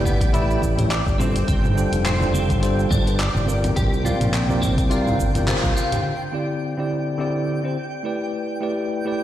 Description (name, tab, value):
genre	sunset chillout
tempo	105 BPM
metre	4/4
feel	swing 56% on 16ths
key	unclear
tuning	A4 = 438 Hz
part	bell-like tine electric piano	accompaniment	0.0-9.2 s	C3 to G5	-24 LUFS	equal	auto-pan, vintage 12-bit sampler grit, low-pass filter, tape echo
part	modern bright fingered electric bass	bass	0.0-5.7 s	F1 to C2	-23 LUFS	equal	none
part	electronic kick drum	drums	0.0-5.7 s	none	-23 LUFS	equal	none
part	twinkling granular texture	texture	0.0-9.2 s	G5	-32 LUFS	right 1 dB	built-in reverb
part	clean electric guitar	arpeggios	0.1-6.0 s	B3 to D5	-28 LUFS	left 1 dB	ensemble chorus, tape echo
part	deep house drum kit	drums	0.1-6.0 s	cabasa, handclaps, hi-hat, toms	-27 LUFS	equal	none
part	congas	percussion	0.1-6.0 s	none	-30 LUFS	equal	none
room	moderate lush hall reverb, RT60 2.0 s, digital ambience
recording	played on a big sound system in a bare room, stone room reverb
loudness	-19 LUFS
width	side -12 dB against mid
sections	0.0-6.0 A section; 6.0-9.2 B section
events	band accent 5.5; filter sweep on tine electric piano 6.0-9.2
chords	0.0 A9sus4; 1.2 G9sus4; 3.8 C9sus4; 6.0 D9sus4; 8.3 A9sus4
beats	0.34 0.91 | 1.48 2.05 2.62 3.19 | 3.76 4.33 4.91 5.48 | 6.05 6.62 7.19 7.76 | 8.34 8.91